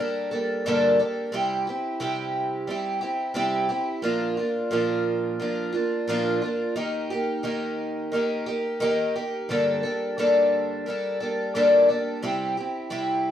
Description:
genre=rock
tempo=88 BPM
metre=4/4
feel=straight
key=G minor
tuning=A4 = 440 Hz
part: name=picked twelve-string acoustic guitar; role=solo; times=0.0-13.3 s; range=G2 to A4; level=-23 LUFS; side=equal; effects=none
room=moderate studio ambience, RT60 0.5 s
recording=band playing live in one room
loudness=-23 LUFS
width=side -10 dB against mid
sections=0.0-13.3 A section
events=none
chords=0.0 Gmadd9; 1.3 C; 4.0 Bb; 6.8 Eb; 9.5 Gmadd9; 12.2 C

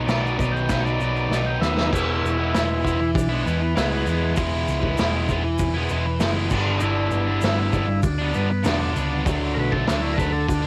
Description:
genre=garage rock duo or trio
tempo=98 BPM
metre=4/4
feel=straight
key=unclear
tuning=A4 = 440 Hz
part: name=crunchy overdriven guitar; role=riff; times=0.0-10.7 s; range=G2 to B4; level=-27 LUFS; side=equal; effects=cassette tape
part: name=hollow-body short-scale picked electric bass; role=bass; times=0.0-10.7 s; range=E1 to G2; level=-27 LUFS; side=equal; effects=none
part: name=combo organ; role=melody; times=0.1-10.6 s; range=G#3 to G5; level=-30 LUFS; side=equal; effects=cassette tape
part: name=vintage drum kit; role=drums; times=0.1-10.6 s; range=crash cymbal, hi-hat, kick drum, snare drum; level=-28 LUFS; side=equal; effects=none
part: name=egg shaker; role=percussion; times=0.1-10.6 s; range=none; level=-46 LUFS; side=equal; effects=none
room=little or no reverb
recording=home recording on cassette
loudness=-22 LUFS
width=mono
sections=0.0-1.9 A section; 1.9-10.7 B section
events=drum fill 1.3-1.9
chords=0.0 B; 1.9 E; 6.5 G; 9.3 D

